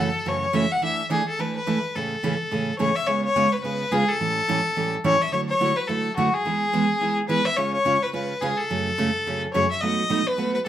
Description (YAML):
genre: country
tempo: 213 BPM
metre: 4/4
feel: swing 60% on 8ths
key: A major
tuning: A4 = 440 Hz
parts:
  - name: clear fiddle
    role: melody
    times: 0.0-10.7 s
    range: F#4 to F#5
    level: -23 LUFS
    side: left 2 dB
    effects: none
  - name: picked steel-string acoustic guitar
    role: accompaniment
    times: 0.0-10.7 s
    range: F#2 to A4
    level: -25 LUFS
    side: right 3 dB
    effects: none
room: moderate club reverb, RT60 0.6 s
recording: none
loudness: -21 LUFS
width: side -11 dB against mid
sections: 0.0-3.1 A section; 3.1-10.7 B section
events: none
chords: 0.0 F#m7; 0.8 E7sus4; 1.9 Amaj7; 3.1 C#7; 4.2 A7; 5.3 Dadd9; 6.5 E; 7.6 C#; 8.7 F#madd9; 9.8 B7